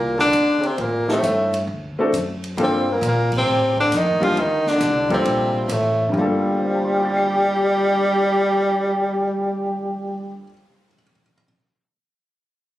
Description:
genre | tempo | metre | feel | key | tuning
jazz, small-group swing and bop | 134 BPM | 4/4 | swing 67% on 8ths | G minor | A4 = 442 Hz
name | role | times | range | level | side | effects
warm tenor saxophone | melody | 0.0-10.5 s | G3 to F4 | -20 LUFS | left 1 dB | none
bright trombone | second line | 0.0-10.4 s | A2 to G4 | -23 LUFS | right 1 dB | none
upright bass | bass | 0.0-10.4 s | G1 to Bb2 | -28 LUFS | equal | none
swinging big-band drum kit | drums | 0.2-5.8 s | crash cymbal, hi-hat, kick drum, ride cymbal, snare drum | -33 LUFS | equal | none
warm baby grand piano | accompaniment | 1.1-11.4 s | G2 to C7 | -23 LUFS | left 1 dB | none
room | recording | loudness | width
moderate large studio reverb, RT60 1.2 s | recorded on a phone in the room, club reverb, compression | -17 LUFS | side -14 dB against mid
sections
0.0-6.1 A section; 6.1-9.7 B section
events
band accent 3.2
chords
0.0 D7(no3); 0.8 Am7b5; 1.7 D7; 2.6 Gm9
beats
0.34 | 0.78 1.23 1.68 2.12 | 2.57 3.02 3.46 3.91 | 4.36 4.80 5.25 5.70 | 6.15 6.59 7.04 7.49 | 7.94 8.38 8.83 9.28

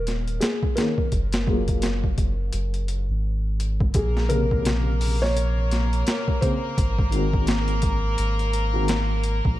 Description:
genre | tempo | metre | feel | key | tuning
trip hop | 85 BPM | 4/4 | swing 59% on 16ths | Bb minor | A4 = 440 Hz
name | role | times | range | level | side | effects
felt-muted upright piano | melody | 0.0-7.8 s | Ab4 to Db5 | -31 LUFS | equal | tape echo
felt-muted upright piano | accompaniment | 0.0-8.9 s | C3 to Ab4 | -30 LUFS | left 2 dB | tremolo, tape echo
soft dub sub bass | bass | 0.0-9.6 s | Eb1 to Bb1 | -24 LUFS | equal | none
boom bap sampler-style drum kit | drums | 0.1-9.6 s | hi-hat, kick drum, snare drum | -25 LUFS | equal | overdrive
rich chamber violin section | sustained chords | 3.9-9.6 s | Bb3 to Bb4 | -30 LUFS | left 1 dB | none
room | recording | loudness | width
small room ambience | dark, warm production | -21 LUFS | side -15 dB against mid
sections
0.0-4.0 A section; 4.0-9.6 B section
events
filter sweep on felt piano 0.0-4.0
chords
0.0 Eb7sus4; 1.1 Gbmaj9; 4.0 Bbm9; 6.8 Ab7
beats
0.42 | 1.13 1.83 2.54 3.25 | 3.95 4.66 5.36 6.07 | 6.78 7.48 8.19 8.89

